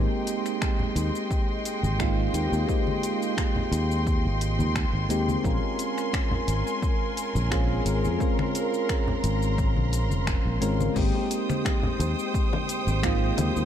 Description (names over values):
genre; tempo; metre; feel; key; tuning
sunset chillout; 87 BPM; 4/4; swing 54% on 16ths; Ab major; A4 = 440 Hz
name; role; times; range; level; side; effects
soft electric-piano-like synth keys; accompaniment; 0.0-13.7 s; Ab3 to Bb4; -28 LUFS; moving between left 4 dB and right 5 dB; chorus, auto-pan, ping-pong delay
rich symphonic string section; sustained chords; 0.0-13.7 s; Ab3 to Eb6; -32 LUFS; equal; none
fretless electric bass; bass; 0.0-13.7 s; F1 to F2; -26 LUFS; equal; none
deep house drum kit; drums; 0.3-13.7 s; cabasa, crash cymbal, finger snaps, hi-hat; -36 LUFS; left 2 dB; overdrive, studio reverb
electronic kick drum; drums; 0.6-13.2 s; none; -27 LUFS; equal; overdrive, studio reverb
congas and bongos; percussion; 0.8-13.5 s; none; -33 LUFS; left 3 dB; none
room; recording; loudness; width
light reverb, digital ambience; dark, warm production; -23 LUFS; side -10 dB against mid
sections
0.0-11.0 A section; 11.0-13.7 B section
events
filter sweep on synth keys 0.0-11.0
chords
0.0 Abmaj7; 5.4 Bbm9; 11.0 Abmaj7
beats
0.62 1.31 2.00 | 2.69 3.38 4.07 4.75 | 5.45 6.13 6.82 7.51 | 8.20 8.89 9.58 10.27 | 10.96 11.65 12.34 13.03